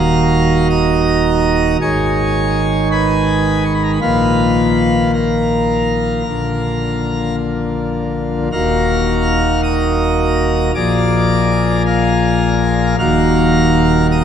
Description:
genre	classical, chorale-style piece for pipe organ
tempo	54 BPM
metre	4/4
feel	straight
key	Eb minor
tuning	A4 = 440 Hz
part	pipe organ, principal chorus	solo	0.0-14.2 s	Eb1 to F6	-13 LUFS	equal	none
room	wet cathedral reverb, RT60 5.7 s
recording	in a vast, echoing space, nothing above 10.4 kHz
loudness	-13 LUFS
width	side -8 dB against mid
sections	0.0-14.2 A section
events	none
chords	0.0 Ebm; 1.8 Abm; 4.0 Bbsus4; 6.3 Bb; 8.5 Ebm; 10.8 Bb7; 13.0 Ebm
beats	0.70 1.80 2.91 | 4.02 5.14 6.27 7.39 | 8.52 9.64 10.75 11.86 | 12.99 14.10

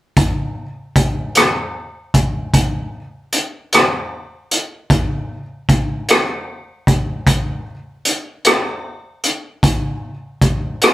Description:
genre	blues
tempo	51 BPM (dotted quarters)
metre	12/8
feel	straight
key	none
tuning	none
part	raw garage drum kit	drums	0.2-10.9 s	hi-hat, kick drum, rim click	-14 LUFS	equal	none
room	light reverb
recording	band playing live in one room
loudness	-15 LUFS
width	side -15 dB against mid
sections	0.2-10.9 A section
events	none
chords	none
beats	| 0.17 1.36 2.54 3.72 | 4.90 6.08 7.26 8.45 | 9.63 10.81

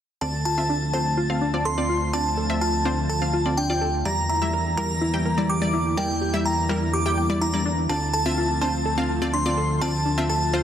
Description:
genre	progressive house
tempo	125 BPM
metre	4/4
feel	straight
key	D minor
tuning	A4 = 440 Hz
part	glassy synth bell	melody	0.2-10.6 s	G5 to D6	-27 LUFS	equal	chorus, dub echo
part	airy dreamy lead	second line	0.2-10.6 s	G5 to D6	-32 LUFS	equal	chorus, cassette tape, dub echo
part	evolving wavetable pad	sustained chords	0.6-10.6 s	D3 to F4	-30 LUFS	equal	chorus, built-in reverb
part	glassy wavetable pluck	arpeggios	0.2-10.6 s	D4 to G5	-30 LUFS	equal	chorus, dub echo
part	wide unison pluck	stabs	0.2-10.6 s	G3 to G5	-28 LUFS	left 1 dB	dub echo
part	fat analog bass	bass	0.2-10.6 s	D2 to E2	-27 LUFS	equal	none
part	shaker	drums	0.2-10.6 s	none	barely audible	none	none
room	moderate lush hall reverb, RT60 1.6 s, digital ambience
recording	dense, heavily limited modern master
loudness	-21 LUFS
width	side -9 dB against mid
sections	0.2-10.6 A section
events	none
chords	0.2 Dm7; 4.1 Em7b5; 7.9 Dm7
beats	| 0.21 0.69 1.17 1.65 | 2.13 2.61 3.09 3.57 | 4.05 4.53 5.01 5.49 | 5.97 6.45 6.93 7.41 | 7.89 8.37 8.85 9.33 | 9.81 10.29

